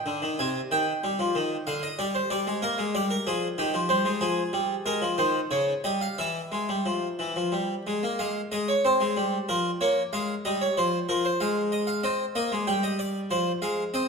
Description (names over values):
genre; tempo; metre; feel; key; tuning
classical, baroque-style two-part invention for harpsichord; 94 BPM; 3/4; straight; F minor from 4.2 s; A4 = 440 Hz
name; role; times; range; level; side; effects
harpsichord; solo; 0.0-14.1 s; C3 to Ab5; -24 LUFS; equal; none
room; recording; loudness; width
wet recital hall reverb, RT60 1.6 s; minimal, uncompressed stereo recording; -24 LUFS; side -5 dB against mid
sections
0.4-8.2 A section; 8.2-14.1 B section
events
none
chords
0.4 Ab/C; 1.7 Dmadd11; 2.3 Gm; 3.6 Cm/Eb; 4.2 Fm; 5.5 Dbadd9; 6.2 Edim; 8.2 Fm/Ab; 9.5 Bbm/F; 10.1 Fm; 11.4 Fm/Ab; 12.0 Cm; 13.3 Fm